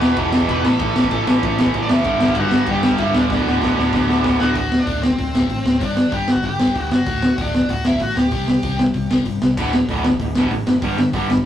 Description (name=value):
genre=punk rock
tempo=191 BPM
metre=4/4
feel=straight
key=D major, D mixolydian from 4.6 s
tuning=A4 = 444 Hz
part: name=high-gain lead guitar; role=melody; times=0.0-8.8 s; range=C4 to B5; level=-24 LUFS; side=equal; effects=distortion, tape echo
part: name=overdriven semi-hollow guitar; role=riff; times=0.0-4.6, 9.6-11.4 s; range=D2 to A3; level=-20 LUFS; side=right 2 dB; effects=none
part: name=sludgy distorted guitar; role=riff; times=0.0-11.4 s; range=D2 to C4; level=-27 LUFS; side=left 4 dB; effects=overdrive
part: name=picked electric bass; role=bass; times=0.0-11.4 s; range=D1 to D2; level=-26 LUFS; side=equal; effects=none
part: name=raw garage drum kit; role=drums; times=0.0-11.4 s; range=crash cymbal, hi-hat, kick drum, ride cymbal, snare drum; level=-18 LUFS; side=equal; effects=none
room=moderate studio reverb, RT60 0.5 s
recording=rough rehearsal-room recording, tube saturation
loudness=-15 LUFS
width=side -10 dB against mid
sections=0.0-4.6 A section; 4.6-11.5 B section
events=drum fill 3.3-4.6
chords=0.0 E5; 0.6 A5; 2.1 G5; 3.3 D; 5.8 G5; 7.1 D; 8.3 C5; 9.6 D5; 10.8 G5